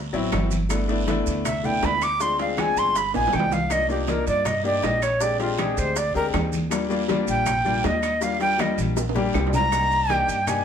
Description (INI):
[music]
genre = Afro-Cuban jazz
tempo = 160 BPM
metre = 4/4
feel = straight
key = Eb major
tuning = A4 = 440 Hz
[part]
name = upright bass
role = bass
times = 0.0-10.6 s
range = G1 to G2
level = -28 LUFS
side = right 1 dB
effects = none
[part]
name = clear grand piano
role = accompaniment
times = 0.1-10.6 s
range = F#3 to G4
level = -26 LUFS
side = left 4 dB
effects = none
[part]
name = bongos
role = percussion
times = 0.1-10.6 s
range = none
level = -34 LUFS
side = left 4 dB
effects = none
[part]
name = congas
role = percussion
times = 0.1-10.6 s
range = none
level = -32 LUFS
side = right 1 dB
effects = none
[part]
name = maracas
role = percussion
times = 0.1-10.6 s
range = none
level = -38 LUFS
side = right 7 dB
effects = none
[part]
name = claves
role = percussion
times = 0.3-10.6 s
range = none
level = -37 LUFS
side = equal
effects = none
[part]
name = guiro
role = percussion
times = 0.3-10.6 s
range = none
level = -39 LUFS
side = right 6 dB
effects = none
[part]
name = timbales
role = percussion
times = 0.3-10.6 s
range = none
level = -32 LUFS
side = right 4 dB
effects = none
[part]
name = breathy bright jazz flute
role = melody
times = 1.5-10.6 s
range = F4 to D6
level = -22 LUFS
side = right 1 dB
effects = none
[sound]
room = moderate studio reverb, RT60 0.8 s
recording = heard from further back in the room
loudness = -20 LUFS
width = side -8 dB against mid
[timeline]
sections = 0.0-9.7 A section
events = flute solo 0.0-10.6; drum fill 3.1-3.7, 8.8-9.7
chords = 0.0 D13; 0.7 G69; 2.2 Dm7b5; 3.0 G7alt; 3.7 Cm11; 5.2 Bb13; 6.7 Ebmaj9; 9.7 Cm9